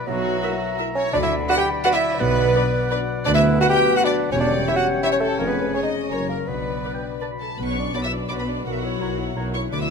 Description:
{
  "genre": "cinematic, playful, whimsical film cue",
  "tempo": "169 BPM",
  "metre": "3/4",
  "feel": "straight",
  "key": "B minor",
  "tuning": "A4 = 440 Hz",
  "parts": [
    { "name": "concert flute", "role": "second line", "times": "0.0-9.4 s", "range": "F#4 to B5", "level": "-30 LUFS", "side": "left 2 dB", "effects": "none" },
    { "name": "warm clarinet", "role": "second line", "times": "0.0-9.5 s", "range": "E4 to E5", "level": "-30 LUFS", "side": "left 2 dB", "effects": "none" },
    { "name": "warm oboe", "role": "second line", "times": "0.0-9.5 s", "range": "C#5 to B5", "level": "-33 LUFS", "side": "right 1 dB", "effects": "none" },
    { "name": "concert harp", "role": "arpeggios", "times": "0.0-9.9 s", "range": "E2 to C#6", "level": "-30 LUFS", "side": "left 10 dB", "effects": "none" },
    { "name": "warm chamber violin section", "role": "melody", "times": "0.1-9.9 s", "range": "F#4 to E6", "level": "-31 LUFS", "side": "left 2 dB", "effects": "none" },
    { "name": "warm chamber violin section", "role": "second line", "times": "0.1-9.9 s", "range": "F#4 to G5", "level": "-28 LUFS", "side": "left 2 dB", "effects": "none" },
    { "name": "mellow bassoon", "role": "accompaniment", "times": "0.1-9.5 s", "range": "F#3 to G4", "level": "-24 LUFS", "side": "right 3 dB", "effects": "none" },
    { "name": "warm chamber double bass section", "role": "bass", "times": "0.1-9.9 s", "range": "E1 to D2", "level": "-29 LUFS", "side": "right 2 dB", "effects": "none" },
    { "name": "warm studio cello section", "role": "bass", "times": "0.1-9.9 s", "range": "D2 to D3", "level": "-31 LUFS", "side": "right 4 dB", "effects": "none" },
    { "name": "warm tuba", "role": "bass", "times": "0.1-9.9 s", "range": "E1 to D2", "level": "-32 LUFS", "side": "right 5 dB", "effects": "none" },
    { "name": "warm chamber viola section", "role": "accompaniment", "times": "0.4-9.9 s", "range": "B3 to F#5", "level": "-30 LUFS", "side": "equal", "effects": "none" },
    { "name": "dark French horn section", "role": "sustained chords", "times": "0.4-9.9 s", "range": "F#3 to B4", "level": "-29 LUFS", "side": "left 5 dB", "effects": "none" }
  ],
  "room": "moderate scoring stage reverb, RT60 1.8 s",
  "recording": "none",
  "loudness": "-19 LUFS",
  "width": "side -5 dB against mid",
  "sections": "0.0-7.6 A section; 7.6-9.9 A section",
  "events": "none",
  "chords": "0.1 F#7/B; 1.1 Bm/D; 2.2 Bm; 3.3 Bm/D; 4.3 C#dim/E; 5.4 C#/E#; 6.1 F#; 6.5 Bm; 8.7 F#7/B"
}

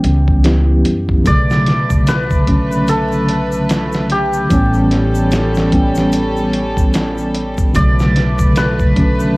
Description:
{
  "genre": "trip hop",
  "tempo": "74 BPM",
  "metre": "4/4",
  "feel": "swing 59% on 16ths",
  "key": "B minor",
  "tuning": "A4 = 441 Hz",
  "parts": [
    { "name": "santur", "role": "melody", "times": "0.0-9.4 s", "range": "G4 to D5", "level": "-21 LUFS", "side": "equal", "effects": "cassette tape, tape echo" },
    { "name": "mellow tine electric piano", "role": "accompaniment", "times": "0.0-9.4 s", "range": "C#3 to G4", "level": "-16 LUFS", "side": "equal", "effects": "tremolo, cassette tape" },
    { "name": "upright bass", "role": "bass", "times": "0.0-9.4 s", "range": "A1 to F#2", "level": "-18 LUFS", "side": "equal", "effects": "none" },
    { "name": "dusty soul sampler-style drum kit", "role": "drums", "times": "0.0-9.2 s", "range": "hi-hat, kick drum, snare drum", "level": "-17 LUFS", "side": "equal", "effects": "none" },
    { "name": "warm symphonic violin section", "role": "sustained chords", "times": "1.3-9.4 s", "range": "G3 to B4", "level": "-23 LUFS", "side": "equal", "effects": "cassette tape" },
    { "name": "tube shaker", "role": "percussion", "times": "1.3-9.3 s", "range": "none", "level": "-38 LUFS", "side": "left 5 dB", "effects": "none" }
  ],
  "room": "light reverb",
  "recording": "home recording on cassette, vinyl crackle",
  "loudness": "-12 LUFS",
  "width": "side -23 dB against mid",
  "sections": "0.0-9.4 A section",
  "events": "none",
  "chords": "0.0 A7 (rootless); 1.3 Bm7; 4.5 A7; 7.7 Bm7"
}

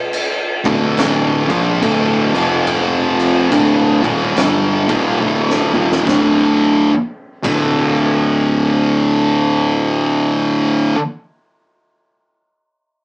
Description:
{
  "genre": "stoner and doom metal",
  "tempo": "71 BPM",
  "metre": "4/4",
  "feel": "swing 62% on 8ths",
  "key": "D minor",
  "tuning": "A4 = 441 Hz",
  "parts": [
    { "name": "oversized low-tuned drum kit", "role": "drums", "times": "0.1-7.6 s", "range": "crash cymbal, kick drum, snare drum, toms", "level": "-20 LUFS", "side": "equal", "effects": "none" },
    { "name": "thick fuzz guitar", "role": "riff", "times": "0.6-11.0 s", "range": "D2 to Bb3", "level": "-13 LUFS", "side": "equal", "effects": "distortion" },
    { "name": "fuzz picked electric bass", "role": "bass", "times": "0.7-10.5 s", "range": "D1 to Bb1", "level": "-24 LUFS", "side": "equal", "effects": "overdrive, tube saturation" }
  ],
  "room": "moderate studio ambience, RT60 0.5 s",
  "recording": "rough rehearsal-room recording, small speaker sound",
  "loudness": "-12 LUFS",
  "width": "side -38 dB against mid",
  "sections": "0.0-6.1 A section; 6.1-9.5 B section",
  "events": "drum fill 5.2-6.1",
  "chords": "0.0 Dm; 2.2 F5; 3.5 D5"
}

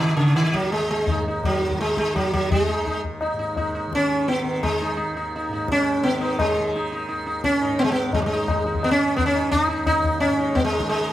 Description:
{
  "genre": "indian classical, Hindustani",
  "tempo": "171 BPM",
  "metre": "4/4",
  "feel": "straight",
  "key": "Eb raga malkauns",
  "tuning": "A4 = 440 Hz",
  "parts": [
    { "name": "sitar", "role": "melody", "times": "0.0-11.1 s", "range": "Db3 to Eb4", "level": "-21 LUFS", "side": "equal", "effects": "none" },
    { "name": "tanpura", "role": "drone", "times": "0.0-11.1 s", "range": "Eb2 to Eb3", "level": "-30 LUFS", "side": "equal", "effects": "none" },
    { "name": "tabla", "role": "percussion", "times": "0.0-11.0 s", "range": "none", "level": "-27 LUFS", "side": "left 3 dB", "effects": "none" }
  ],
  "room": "moderate large studio reverb, RT60 1.1 s",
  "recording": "band playing live in one room",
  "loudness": "-20 LUFS",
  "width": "side -13 dB against mid",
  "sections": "0.0-8.1 A section; 8.1-11.1 B section",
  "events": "speeding up 0.0-11.1",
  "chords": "none"
}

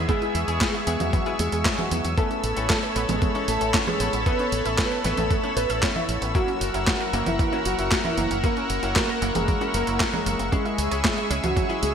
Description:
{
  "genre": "italo disco",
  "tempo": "115 BPM",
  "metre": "4/4",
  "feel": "straight",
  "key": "unclear",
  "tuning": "A4 = 441 Hz",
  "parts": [
    { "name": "lush unison pad", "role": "sustained chords", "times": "0.0-11.9 s", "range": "G#4 to E6", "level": "-28 LUFS", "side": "equal", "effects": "chorus" },
    { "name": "wide unison pluck", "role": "arpeggios", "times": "0.0-11.8 s", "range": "A#3 to E5", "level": "-33 LUFS", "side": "right 5 dB", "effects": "ping-pong delay" },
    { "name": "direct-recorded clean electric guitar", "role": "stabs", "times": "0.0-11.9 s", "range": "G#3 to C#5", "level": "-32 LUFS", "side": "left 5 dB", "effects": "analog chorus" },
    { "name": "deep dub fingered electric bass", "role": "bass", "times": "0.0-11.9 s", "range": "F#1 to E2", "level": "-29 LUFS", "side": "equal", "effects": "none" },
    { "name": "downlifter", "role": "sound effects", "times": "0.0-2.2 s", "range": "none", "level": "barely audible", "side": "none", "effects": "none" },
    { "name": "warm concert grand piano", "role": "melody", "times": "0.1-11.9 s", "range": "E3 to E5", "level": "-28 LUFS", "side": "right 1 dB", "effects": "ensemble chorus, ping-pong delay" },
    { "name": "dusty soul sampler-style drum kit", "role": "drums", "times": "0.1-11.9 s", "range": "congas, handclaps, hi-hat, snare drum", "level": "-27 LUFS", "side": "right 1 dB", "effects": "overdrive, small room reverb" },
    { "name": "electronic kick drum", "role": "drums", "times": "0.1-11.7 s", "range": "none", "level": "-26 LUFS", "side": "equal", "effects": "overdrive, small room reverb" }
  ],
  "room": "moderate lush hall reverb, RT60 1.6 s",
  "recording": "bright 1980s-style digital production",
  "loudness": "-21 LUFS",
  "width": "side -7 dB against mid",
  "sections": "0.0-11.9 A section",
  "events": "none",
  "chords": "0.0 E; 2.2 Aadd9; 6.3 F#7; 10.5 C#m"
}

